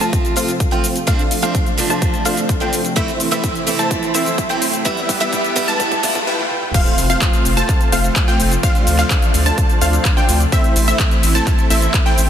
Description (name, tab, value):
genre	EDM, festival progressive house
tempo	127 BPM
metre	4/4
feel	straight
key	A minor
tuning	A4 = 440 Hz
part	picked steel-string acoustic guitar	accompaniment	0.0-6.2 s	E3 to F4	-22 LUFS	right 3 dB	sidechain pumping, ping-pong delay
part	lush unison pad	sustained chords	0.0-12.3 s	C3 to G4	-26 LUFS	right 1 dB	chorus, sidechain pumping
part	wide unison pluck	arpeggios	0.0-12.3 s	E5 to A5	-23 LUFS	equal	sidechain pumping, ping-pong delay
part	supersaw stab	riff	0.0-12.3 s	G3 to A5	-21 LUFS	equal	sidechain pumping, low-pass filter, ping-pong delay
part	saturated sub bass	bass	0.0-12.3 s	F1 to D2	-18 LUFS	equal	sidechain pumping, high-pass filter
part	big-room dance drum kit	drums	0.0-12.3 s	crash cymbal, handclaps, hi-hat, shaker, toms	-22 LUFS	equal	overdrive
part	riser, swell and impact	sound effects	2.3-8.6 s	none	-30 LUFS	equal	none
part	electronic kick drum	drums	0.1-12.0 s	none	-18 LUFS	equal	overdrive
room	moderate lush hall reverb, RT60 2.3 s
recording	dense, heavily limited modern master, high-pass filter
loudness	-14 LUFS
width	side -9 dB against mid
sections	0.0-6.7 A section; 6.7-12.3 B section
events	build-up 0.0-6.7; filter sweep on supersaw synth 0.0-6.7; filter sweep on analog synth pad 0.0-6.7; filter sweep 0.0-6.7; drum fill 3.0-6.3, 6.4-6.7; swell 5.8-6.7; break 6.3-6.7; drop 6.7-12.3; impact 6.7-8.6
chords	0.0 F; 1.1 Dm7; 3.0 Am; 4.9 Em; 6.7 F; 8.6 Dm7; 10.5 Am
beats	0.13 0.60 | 1.07 1.55 2.02 2.49 | 2.96 3.44 3.91 4.38 | 4.85 5.33 5.80 6.27 | 6.74 7.22 7.69 8.16 | 8.63 9.11 9.58 10.05 | 10.52 11.00 11.47 11.94